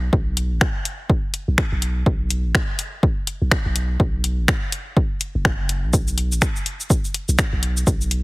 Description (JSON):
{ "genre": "minimal techno", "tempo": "124 BPM", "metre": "4/4", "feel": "swing 59% on 16ths", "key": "unclear", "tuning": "A4 = 441 Hz", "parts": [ { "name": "punchy sub bass", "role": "bass", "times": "0.0-8.2 s", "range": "F#1 to B1", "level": "-21 LUFS", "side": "equal", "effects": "tube saturation, sidechain pumping" }, { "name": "electronic kick drum", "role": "drums", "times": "0.1-8.0 s", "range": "none", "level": "-20 LUFS", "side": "equal", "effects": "none" }, { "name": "punchy analog drum machine", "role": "drums", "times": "0.4-8.2 s", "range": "cabasa, finger snaps, hi-hat", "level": "-23 LUFS", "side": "left 1 dB", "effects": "none" } ], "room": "digital ambience", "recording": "heavily compressed radio sound", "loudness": "-18 LUFS", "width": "side -23 dB against mid", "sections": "0.0-8.2 A section", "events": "none", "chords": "none" }